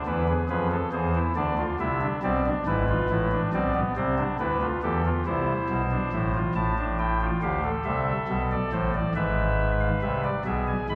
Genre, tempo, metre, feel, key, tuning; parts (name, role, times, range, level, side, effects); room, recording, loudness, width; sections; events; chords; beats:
classical, baroque-style 3-part fugue for pipe organ; 46 BPM (dotted quarters); 12/8; straight; A minor; A4 = 443 Hz
pipe organ, soft reed; solo; 0.0-10.9 s; G#1 to B5; -26 LUFS; equal
wet church reverb, RT60 2.9 s; heard from further back in the room; -26 LUFS; mono
0.0-6.6 A section; 6.6-10.9 B section
0.0 E; 1.4 E7; 4.0 Am; 9.2 E/G#
0.05 | 1.35 2.65 3.96 5.26 | 6.56 7.86 9.16 10.45